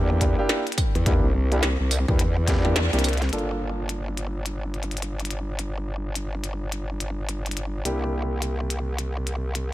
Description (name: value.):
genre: glitch hop.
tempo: 106 BPM.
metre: 4/4.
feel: swing 61% on 16ths.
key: G dorian.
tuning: A4 = 440 Hz.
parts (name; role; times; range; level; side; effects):
dark grand piano; stabs; 0.0-9.7 s; Bb3 to A4; -29 LUFS; equal; sidechain pumping, ping-pong delay.
growl bass; bass; 0.0-9.7 s; G1 to E2; -25 LUFS; equal; chorus.
electronic kick drum; drums; 0.2-2.6 s; none; -23 LUFS; equal; none.
glitchy drum kit; drums; 0.2-9.7 s; hi-hat, snare drum, tambourine; -28 LUFS; equal; none.
room: little or no reverb.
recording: none.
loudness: -23 LUFS.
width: side -15 dB against mid.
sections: 0.0-3.3 A section; 3.3-9.7 B section.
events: kick drops out 2.8-3.3; band accent 2.8.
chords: 0.0 C9; 3.3 Gm7; 7.9 C9.